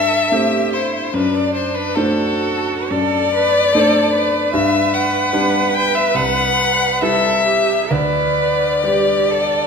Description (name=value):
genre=classical, slow romantic movement for piano trio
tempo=61-77 BPM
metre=4/4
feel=rubato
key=G major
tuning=A4 = 444 Hz
part: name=rich violin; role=melody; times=0.0-9.7 s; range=A4 to G5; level=-17 LUFS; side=left 5 dB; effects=none
part: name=clear cello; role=second line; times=0.0-9.7 s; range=D4 to B4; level=-20 LUFS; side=right 8 dB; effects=none
part: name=warm concert grand piano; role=accompaniment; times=0.0-9.7 s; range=C2 to C5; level=-20 LUFS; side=equal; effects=none
room=wet recital hall reverb, RT60 1.6 s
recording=minimal, uncompressed stereo recording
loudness=-14 LUFS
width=side -6 dB against mid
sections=0.0-9.7 A section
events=none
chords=0.0 Am7/G; 1.1 D7/F#; 4.5 G; 6.2 Cmaj7; 7.9 G/D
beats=0.33 | 1.14 1.97 2.91 3.75 | 4.53 5.33 6.16 7.01 | 7.91 8.82